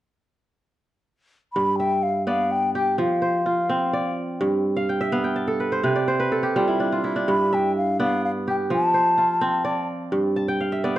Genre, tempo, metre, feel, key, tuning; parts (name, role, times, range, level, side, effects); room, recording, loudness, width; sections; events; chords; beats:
west african traditional; 84 BPM (dotted quarters); 12/8; straight; G mixolydian; A4 = 440 Hz
mellow hollow concert flute; melody; 1.5-9.9 s; F5 to B5; -22 LUFS; left 2 dB
kora; arpeggios; 1.6-11.0 s; G2 to A5; -22 LUFS; right 1 dB
moderate recital hall reverb, RT60 1.2 s; dark, warm production; -20 LUFS; side -14 dB against mid
1.5-11.0 A section
kora fill 4.8-7.3, 10.4-11.0
1.5 G; 3.0 F5; 4.4 G; 5.8 C5; 7.3 G; 8.7 F; 10.1 G
| 1.55 2.26 2.98 3.69 | 4.41 5.12 5.84 6.55 | 7.27 7.98 8.70 9.41 | 10.12 10.84